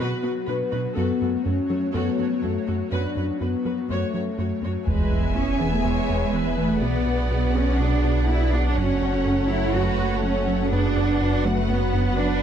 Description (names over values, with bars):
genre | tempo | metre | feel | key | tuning
cinematic, hybrid orchestral and electronic film score | 123 BPM | 4/4 | straight | F# minor | A4 = 440 Hz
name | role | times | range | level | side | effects
warm symphonic viola section | accompaniment | 0.0-12.4 s | F#4 to C#5 | -34 LUFS | equal | none
airy breathy pad | sustained chords | 0.0-12.4 s | E3 to E5 | -32 LUFS | equal | chorus
dark French horn section | sustained chords | 0.0-12.4 s | G#3 to B4 | -30 LUFS | left 6 dB | none
warbly dusty pluck | arpeggios | 0.0-12.3 s | E3 to B4 | -36 LUFS | left 8 dB | none
rubbery square bass | riff | 0.0-12.3 s | E2 to B3 | -28 LUFS | right 2 dB | none
warm studio cello section | bass | 0.0-12.4 s | F#2 to F#4 | -27 LUFS | right 4 dB | none
warm symphonic violin section | melody | 4.9-12.4 s | F#5 to G#5 | -33 LUFS | left 5 dB | none
warm studio violin section | second line | 4.9-12.4 s | A4 to E5 | -32 LUFS | left 4 dB | none
bright trombone section | sustained chords | 4.9-12.4 s | E3 to D4 | -35 LUFS | right 4 dB | none
punchy sub bass | bass | 4.9-12.4 s | E1 to B1 | -27 LUFS | equal | none
rich symphonic double bass section | bass | 4.9-12.4 s | F#1 to E2 | -29 LUFS | right 3 dB | none
sub drop | sound effects | 4.9-6.8 s | none | -29 LUFS | equal | none
room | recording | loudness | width
light reverb | dark, warm production | -20 LUFS | side -8 dB against mid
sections
0.0-4.9 A section; 4.9-12.4 B section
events
impact 4.9-6.8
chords
0.0 Bm; 1.0 F#m; 2.9 Bm/F#; 3.9 F#m; 4.9 E; 6.8 Bm; 8.8 F#m; 10.7 Bm/F#